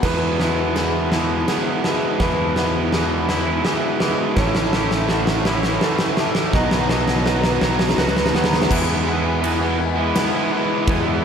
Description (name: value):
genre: post-rock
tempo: 83 BPM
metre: 3/4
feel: straight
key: E major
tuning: A4 = 440 Hz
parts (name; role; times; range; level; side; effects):
- felt-muted upright piano; arpeggios; 0.0-8.7 s; G#4 to D#5; -28 LUFS; right 3 dB; analog delay
- twangy electric guitar; arpeggios; 0.0-11.2 s; E2 to C#5; -29 LUFS; left 2 dB; analog delay, slapback echo
- overdriven electric guitar; riff; 0.0-11.2 s; A2 to E4; -23 LUFS; right 9 dB; none
- raw garage guitar; riff; 0.0-11.2 s; E2 to E4; -24 LUFS; left 8 dB; overdrive, slapback echo
- fuzz fingered electric bass; bass; 0.0-11.2 s; A1 to E2; -24 LUFS; equal; overdrive
- huge arena drum kit; drums; 0.0-11.0 s; crash cymbal, kick drum, ride cymbal, snare drum; -22 LUFS; equal; none
room: moderate lush hall reverb, RT60 2.3 s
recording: big arena sound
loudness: -17 LUFS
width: side -7 dB against mid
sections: 0.0-8.7 A section; 8.7-11.2 B section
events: build-up 0.0-8.7; drum fill 0.0-8.7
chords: 0.0 Eadd9; 4.4 A6; 6.5 Badd9; 8.7 Eadd9